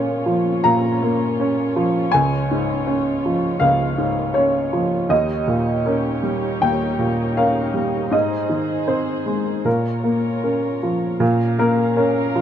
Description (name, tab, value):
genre	neoclassical piano and strings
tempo	80 BPM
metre	4/4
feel	rubato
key	Bb minor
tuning	A4 = 440 Hz
part	clear upright piano	accompaniment	0.0-12.4 s	Db2 to Bb5	-18 LUFS	equal	none
part	muted chamber string section	sustained chords	0.0-12.4 s	Db4 to F5	-29 LUFS	left 1 dB	none
room	light reverb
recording	dark, warm production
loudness	-17 LUFS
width	side -9 dB against mid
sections	0.0-11.2 A section; 11.2-12.4 A section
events	none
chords	0.0 Bbm; 2.1 Db; 5.1 Eb7; 8.1 Ab; 9.7 Bbm